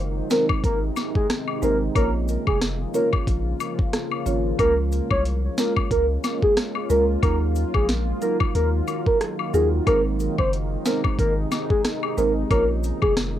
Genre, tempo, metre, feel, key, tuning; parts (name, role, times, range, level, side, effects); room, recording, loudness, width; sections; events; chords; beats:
dancehall; 91 BPM; 4/4; swing 56% on 16ths; A4 = 440 Hz
marimba with medium mallets; accompaniment; 0.0-13.4 s; Gb3 to Db5; -30 LUFS; right 9 dB; cassette tape
deep dark ambient pad; sustained chords; 0.0-13.4 s; C3 to F4; -30 LUFS; left 1 dB; chorus, built-in reverb, sidechain pumping, cassette tape
punchy sub bass; bass; 0.0-13.4 s; F1 to Eb2; -25 LUFS; equal
soft octave-layered synth lead; melody; 0.3-13.1 s; Ab4 to Db5; -24 LUFS; equal; chorus, phaser, cassette tape, analog delay
island pop drum kit; drums; 0.3-13.3 s; hi-hat, kick drum, rim click, snare drum; -24 LUFS; equal; overdrive, cassette tape
cabasa and woodblock; percussion; 0.3-13.2 s; -30 LUFS; left 11 dB
light reverb; home recording on cassette; -20 LUFS; side -11 dB against mid
0.0-4.6 A section; 4.6-13.4 A section
0.0 Ab; 2.0 Bbm; 4.6 Db6; 7.2 Ebmadd9; 9.9 Ab; 12.5 Bbm
0.64 1.30 | 1.96 2.62 3.27 3.93 | 4.59 5.25 5.91 6.57 | 7.23 7.89 8.55 9.21 | 9.87 10.53 11.19 11.85 | 12.51 13.16